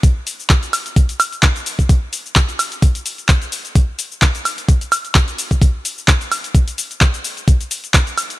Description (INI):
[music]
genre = house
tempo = 129 BPM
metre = 4/4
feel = swing 55% on 16ths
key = none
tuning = none
[part]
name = electronic kick drum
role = drums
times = 0.0-8.0 s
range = none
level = -13 LUFS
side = equal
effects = none
[part]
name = punchy analog drum machine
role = drums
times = 0.0-8.4 s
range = cabasa, handclaps, hi-hat, woodblock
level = -18 LUFS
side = equal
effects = overdrive
[sound]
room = digital ambience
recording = none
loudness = -14 LUFS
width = side -18 dB against mid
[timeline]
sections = 0.0-8.4 A section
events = none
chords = none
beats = | 0.03 0.50 0.96 1.43 | 1.90 2.36 2.83 3.29 | 3.75 4.22 4.68 5.15 | 5.62 6.08 6.55 7.01 | 7.48 7.94